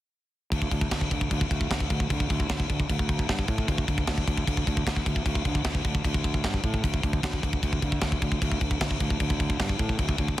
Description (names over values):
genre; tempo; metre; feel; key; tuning
heavy metal; 152 BPM; 4/4; straight; unclear; A4 = 440 Hz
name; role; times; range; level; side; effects
fuzz fingered electric bass; bass; 0.5-10.4 s; D2 to A2; -29 LUFS; equal; overdrive
tight metal drum kit; drums; 0.5-10.4 s; crash cymbal, kick drum, snare drum; -26 LUFS; equal; none
room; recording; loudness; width
little or no reverb; dense, heavily limited modern master; -24 LUFS; side -15 dB against mid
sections
0.5-10.4 A section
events
none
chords
none